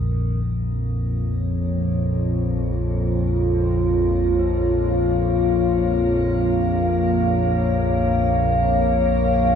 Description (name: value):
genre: dark ambient drone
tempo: free time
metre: none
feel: none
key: Bb minor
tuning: A4 = 440 Hz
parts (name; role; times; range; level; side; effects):
- bronze singing bowl; arpeggios; 0.0-9.6 s; F3 to Bb4; -39 LUFS; right 1 dB; tape echo, shimmer reverb
- analog drone; drone; 0.0-9.6 s; Bb1 to F2; -21 LUFS; equal; chorus
- dark analog pad; sustained chords; 0.4-9.6 s; Bb3 to F5; -21 LUFS; left 1 dB; wide subtle chorus, shimmer reverb
- icy glass pad; texture; 1.2-9.6 s; Bb3 to Bb4; -37 LUFS; left 1 dB; chorus, built-in reverb, shimmer reverb
room: wet cathedral reverb, RT60 5.7 s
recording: none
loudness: -18 LUFS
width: side -7 dB against mid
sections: 0.5-9.6 A section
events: fade-in on ambient pad 0.5-9.6; fade-in on singing bowl 0.5-9.6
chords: 0.5 Bbm